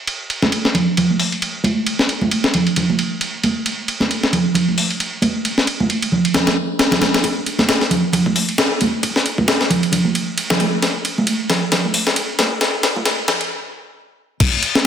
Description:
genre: breakbeat.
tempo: 134 BPM.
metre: 4/4.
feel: swing 57% on 16ths.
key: none.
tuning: none.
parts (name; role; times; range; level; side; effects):
breakbeat sampler-style drum kit; drums; 0.1-14.8 s; crash cymbal, hi-hat, kick drum, ride cymbal, snare drum; -17 LUFS; left 1 dB; high-pass filter on cymbals, low-pass filter on cymbals, high-pass filter on snare, low-pass filter on snare, high-pass filter on hats, low-pass filter on hats, high-pass filter on kick, low-pass filter on kick.
congas; percussion; 0.4-13.4 s; none; -19 LUFS; right 2 dB; none.
room: wet plate reverb, RT60 1.5 s, digital ambience.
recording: dense, heavily limited modern master, high-pass filter.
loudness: -15 LUFS.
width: side -8 dB against mid.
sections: 0.0-7.2 A section; 7.2-14.4 B section.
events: build-up 7.2-14.4; drum fill 10.8-13.5; stop 13.5-14.4.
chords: none.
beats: | 0.08 0.53 0.97 1.42 | 1.87 2.32 2.76 3.21 | 3.66 4.11 4.55 5.00 | 5.45 5.90 6.35 6.79 | 7.24 7.69 8.14 8.59 | 9.03 9.48 9.93 10.38 | 10.82 11.27 11.72 12.17 | 12.62 13.06 13.51 13.96 | 14.41.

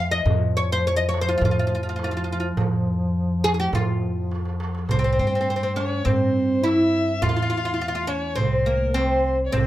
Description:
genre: Arabic maqam ensemble.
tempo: 103 BPM.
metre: 4/4.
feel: straight.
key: F maqam saba, C maqam hijaz from 4.9 s.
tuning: A4 = 441 Hz.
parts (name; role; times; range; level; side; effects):
oud; melody; 0.0-9.7 s; Bb3 to F5; -23 LUFS; equal; none.
upright bass; bass; 0.0-9.7 s; C2 to G2; -26 LUFS; equal; none.
mellow duduk; drone; 0.0-4.9 s; F3; -32 LUFS; equal; none.
darbuka; percussion; 0.1-9.7 s; none; -27 LUFS; right 2 dB; none.
dark violin; second line; 4.9-9.7 s; Bb4 to F5; -27 LUFS; left 2 dB; none.
room: moderate studio reverb, RT60 0.5 s.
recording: none.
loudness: -20 LUFS.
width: side -14 dB against mid.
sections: 0.0-4.9 A section; 4.9-9.7 B section.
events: drum fill 4.3-4.9.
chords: none.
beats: | 0.26 0.84 1.42 2.00 | 2.57 3.15 3.73 4.31 | 4.89 5.47 6.05 6.64 | 7.22 7.80 8.38 8.96 | 9.54.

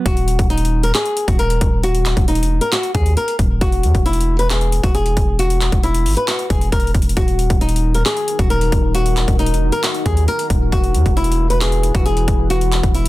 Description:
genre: hip hop, trap.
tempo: 135 BPM.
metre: 4/4.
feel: half-time.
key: Eb phrygian.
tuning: A4 = 440 Hz.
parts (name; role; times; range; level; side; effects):
flamenco guitar; melody; 0.1-13.1 s; Eb4 to B4; -20 LUFS; left 1 dB; none.
long sustained 808-style bass; bass; 0.1-13.1 s; Eb1 to E2; -17 LUFS; equal; none.
trap drum kit; drums; 0.1-13.1 s; handclaps, hi-hat, kick drum; -19 LUFS; equal; overdrive.
deep dark ambient pad; sustained chords; 7.8-13.1 s; Eb3 to B4; -26 LUFS; left 1 dB; chorus, built-in reverb.
room: little or no reverb.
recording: dense, heavily limited modern master.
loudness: -14 LUFS.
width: side -17 dB against mid.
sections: 0.1-13.1 A section.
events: none.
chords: 0.1 Ebm; 3.6 Esus2; 7.2 Ebm; 10.7 Esus2.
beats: | 0.06 0.50 0.95 1.39 | 1.83 2.28 2.72 3.17 | 3.61 4.06 4.50 4.95 | 5.39 5.83 6.28 6.72 | 7.17 7.61 8.06 8.50 | 8.95 9.39 9.84 10.28 | 10.72 11.17 11.61 12.06 | 12.50 12.95.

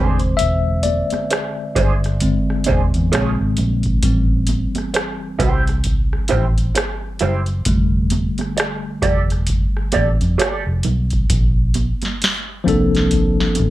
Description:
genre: R&B, neo-soul.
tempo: 66 BPM.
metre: 4/4.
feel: swing 59% on 16ths.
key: unclear.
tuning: A4 = 440 Hz.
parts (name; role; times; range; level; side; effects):
electric guitar through a small old amp; second line; 0.0-10.6 s; D4 to D5; -21 LUFS; right 4 dB; wah, plate reverb.
tine electric piano; accompaniment; 0.0-13.7 s; Db3 to E5; -22 LUFS; left 2 dB; medium stereo tremolo, plate reverb.
vintage muted fingered electric bass; bass; 0.0-13.7 s; E1 to F2; -20 LUFS; equal; none.
booming analog drum machine; drums; 0.2-13.7 s; hi-hat, kick drum, rim click, snare drum; -20 LUFS; equal; none.
congas; percussion; 0.4-13.7 s; none; -29 LUFS; right 6 dB; none.
room: light reverb.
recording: none.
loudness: -16 LUFS.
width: side -15 dB against mid.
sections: 0.0-11.3 A section; 11.3-13.7 B section.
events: tine electric piano solo 0.0-11.3.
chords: 0.0 E7alt; 3.1 Bbm7; 4.0 Am7; 7.7 F69; 11.3 Bbmaj9.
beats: | 0.39 1.30 2.21 3.12 | 4.03 4.94 5.85 6.75 | 7.67 8.57 9.48 10.39 | 11.30 12.21 13.12.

